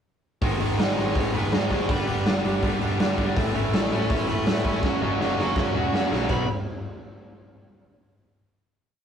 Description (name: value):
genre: punk rock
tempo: 163 BPM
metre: 4/4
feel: straight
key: unclear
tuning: A4 = 439 Hz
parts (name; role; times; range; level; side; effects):
- biting overdriven guitar; riff; 0.4-6.5 s; F#2 to B3; -27 LUFS; right 3 dB; none
- distorted electric guitar; riff; 0.4-6.5 s; G2 to F#4; -30 LUFS; left 5 dB; distortion
- hollow-body short-scale picked electric bass; bass; 0.4-6.5 s; E1 to A2; -32 LUFS; equal; none
- raw garage drum kit; drums; 0.4-6.4 s; china cymbal, hi-hat, kick drum, snare drum; -25 LUFS; equal; none
- nasal lead guitar with a parked wah; melody; 0.8-6.5 s; B3 to B5; -33 LUFS; equal; overdrive
room: light reverb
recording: rough rehearsal-room recording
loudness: -21 LUFS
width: side -8 dB against mid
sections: 0.4-6.3 verse; 6.3-7.8 final chord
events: drum fill 4.8-6.3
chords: 0.4 G#m; 1.9 G; 3.4 A; 4.8 F#; 6.3 B5